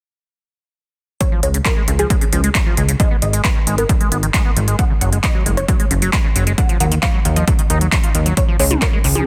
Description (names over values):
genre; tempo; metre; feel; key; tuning
uplifting trance; 134 BPM; 4/4; straight; unclear; A4 = 440 Hz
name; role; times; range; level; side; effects
unison pluck; melody; 1.2-9.3 s; Ab4 to Gb5; -28 LUFS; equal; cassette tape, sidechain pumping, digital delay
liquid acid bass; arpeggios; 1.2-9.2 s; Db3 to F4; -26 LUFS; equal; phaser, sidechain pumping, digital delay
big-room dance drum kit; drums; 1.2-9.2 s; handclaps, hi-hat, toms; -24 LUFS; equal; overdrive, sidechain pumping on hats, sidechain pumping on toms
electronic kick drum; drums; 1.2-8.9 s; none; -19 LUFS; equal; overdrive
plucky analog bass; bass; 1.4-9.2 s; Gb1 to Eb2; -20 LUFS; equal; sidechain pumping
room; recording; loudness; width
little or no reverb; dense, heavily limited modern master; -16 LUFS; mono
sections
1.2-9.3 A section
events
none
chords
1.2 Db; 3.0 Abm; 4.8 Gbsus2; 6.6 Ebmadd9; 8.4 Db